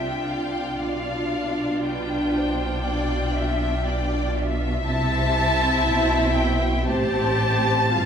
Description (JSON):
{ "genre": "classical, slow romantic movement for string orchestra", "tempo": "59 BPM", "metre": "4/4", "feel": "rubato", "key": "unclear", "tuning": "A4 = 440 Hz", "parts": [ { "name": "rich chamber violin section", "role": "melody", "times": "0.0-8.1 s", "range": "F5 to A5", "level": "-26 LUFS", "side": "left 3 dB", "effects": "none" }, { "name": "rich chamber violin section", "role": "second line", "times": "0.0-8.1 s", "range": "B4 to F5", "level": "-28 LUFS", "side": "left 3 dB", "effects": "none" }, { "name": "rich chamber viola section", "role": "accompaniment", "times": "0.0-8.1 s", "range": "B3 to G4", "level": "-26 LUFS", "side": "right 1 dB", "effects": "none" }, { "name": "rich chamber double bass section", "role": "bass", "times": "0.0-8.1 s", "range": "G1 to C2", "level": "-27 LUFS", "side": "right 1 dB", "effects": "none" }, { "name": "rich symphonic cello section", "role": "bass", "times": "0.0-8.1 s", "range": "G2 to C3", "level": "-30 LUFS", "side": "right 3 dB", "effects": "none" } ], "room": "wet recital hall reverb, RT60 1.6 s", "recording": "minimal, uncompressed stereo recording", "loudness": "-20 LUFS", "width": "side -7 dB against mid", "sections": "0.0-8.1 A section", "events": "none", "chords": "0.0 Dm7/C; 0.8 G7/B; 4.9 C; 6.9 Am7" }